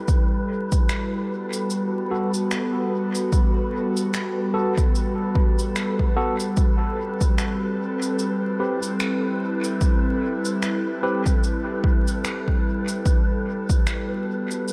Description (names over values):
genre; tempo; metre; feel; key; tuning
ambient dub; 74 BPM; 4/4; swing 58% on 16ths; unclear; A4 = 440 Hz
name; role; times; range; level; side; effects
airy breathy pad; sustained chords; 0.0-14.7 s; G3 to A4; -28 LUFS; equal; chorus
wind-like tuned noise texture; texture; 0.0-14.7 s; B4; -35 LUFS; equal; built-in reverb
electronic kick drum; drums; 0.1-13.8 s; none; -23 LUFS; equal; overdrive
electronic shaker and finger snaps; drums; 0.1-14.7 s; none; -35 LUFS; equal; dub echo
barky tine electric piano; stabs; 2.1-11.2 s; B3 to B4; -31 LUFS; equal; overdrive, dub echo
room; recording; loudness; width
moderate echo chamber reverb, RT60 2.0 s; vinyl crackle; -23 LUFS; mono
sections
0.0-14.7 A section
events
none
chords
0.1 Gmaj9; 6.6 Am7; 13.1 Gmaj9